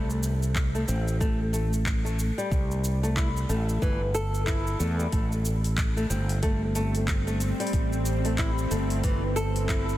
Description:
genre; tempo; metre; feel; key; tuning
organic downtempo; 92 BPM; 4/4; swing 60% on 16ths; A minor; A4 = 440 Hz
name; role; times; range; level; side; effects
flamenco guitar; arpeggios; 0.0-10.0 s; E3 to A4; -30 LUFS; left 1 dB; tape echo
fretless electric bass; bass; 0.0-10.0 s; G1 to E2; -27 LUFS; equal; sidechain pumping
afro-pop drum kit; drums; 0.1-10.0 s; cabasa, handclaps, hi-hat; -36 LUFS; equal; studio reverb
electronic kick drum; drums; 0.6-9.8 s; none; -28 LUFS; equal; studio reverb
bowed-like drone; sustained chords; 6.6-10.0 s; G3 to C4; -33 LUFS; equal; built-in reverb, sidechain pumping
room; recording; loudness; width
light reverb, digital ambience; dense, heavily limited modern master; -24 LUFS; side -14 dB against mid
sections
0.0-10.0 A section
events
none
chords
0.0 Am7

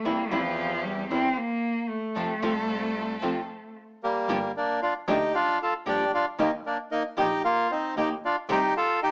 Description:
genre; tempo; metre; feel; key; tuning
tango; 114 BPM; 4/4; rubato; G minor from 4.3 s; A4 = 440 Hz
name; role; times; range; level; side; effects
warm cello; second line; 0.0-3.7 s; F3 to C4; -31 LUFS; equal; none
rich chamber string section; stabs; 0.0-3.4 s; C4 to A4; -39 LUFS; equal; analog delay
bright double bass; bass; 0.0-8.7 s; G1 to F2; -38 LUFS; equal; none
flamenco guitar; accompaniment; 0.1-8.6 s; C3 to G4; -31 LUFS; equal; none
bandoneon; melody; 4.0-9.1 s; G3 to A4; -27 LUFS; equal; plate reverb
room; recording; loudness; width
moderate club reverb, RT60 0.8 s; small speaker sound; -27 LUFS; mono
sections
0.0-4.3 A section; 4.3-9.1 B section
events
cello solo 0.0-4.3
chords
0.0 C/E; 2.2 F; 4.3 Gm7; 6.4 Eb; 8.5 Cm

